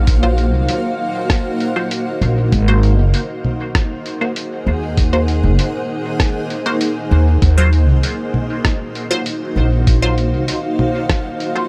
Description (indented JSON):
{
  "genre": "ambient dub",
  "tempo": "98 BPM",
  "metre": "4/4",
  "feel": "straight",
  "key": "Eb dorian",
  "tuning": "A4 = 441 Hz",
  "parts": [
    { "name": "granular cloud pad", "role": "sustained chords", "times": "0.0-11.7 s", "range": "Bb3 to Gb5", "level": "-23 LUFS", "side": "equal", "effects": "built-in reverb" },
    { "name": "upright bass", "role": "bass", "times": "0.0-10.5 s", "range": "Gb1 to Eb2", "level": "-16 LUFS", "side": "equal", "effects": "none" },
    { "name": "electronic kick drum", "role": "drums", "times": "0.1-11.2 s", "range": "none", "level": "-18 LUFS", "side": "equal", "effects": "none" },
    { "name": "lo-fi sampler-style drum kit", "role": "drums", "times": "0.1-11.5 s", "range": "congas, hi-hat, rim click", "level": "-25 LUFS", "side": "equal", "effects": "dub echo" },
    { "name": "filtered dub chord stab", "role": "stabs", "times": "0.2-11.7 s", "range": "Gb3 to C5", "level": "-26 LUFS", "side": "equal", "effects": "phaser, dub echo" }
  ],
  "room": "light reverb, digital ambience",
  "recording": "none",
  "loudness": "-17 LUFS",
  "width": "mono",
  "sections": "0.0-11.7 A section",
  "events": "none",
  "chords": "0.0 Ebm69; 2.5 Ab9; 7.4 Ebm69"
}